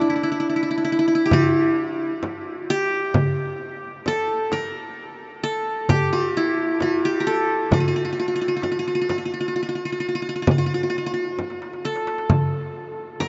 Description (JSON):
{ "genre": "Arabic maqam ensemble", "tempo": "131 BPM (eighths)", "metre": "10/8", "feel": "straight", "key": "unclear", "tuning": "A4 = 440 Hz", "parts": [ { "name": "qanun", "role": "melody", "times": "0.0-13.3 s", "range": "D4 to Bb4+20c", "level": "-24 LUFS", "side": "equal", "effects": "none" }, { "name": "darbuka", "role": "percussion", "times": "1.3-13.3 s", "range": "none", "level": "-28 LUFS", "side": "equal", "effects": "none" }, { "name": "frame drum", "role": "percussion", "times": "1.3-13.3 s", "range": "none", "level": "-26 LUFS", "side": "equal", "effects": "none" } ], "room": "wet huge ambient reverb, RT60 8.3 s", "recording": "in a vast, echoing space, nothing above 7.8 kHz", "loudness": "-23 LUFS", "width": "mono", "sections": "0.0-13.3 A section", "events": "drum fill 11.4-12.3", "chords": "none" }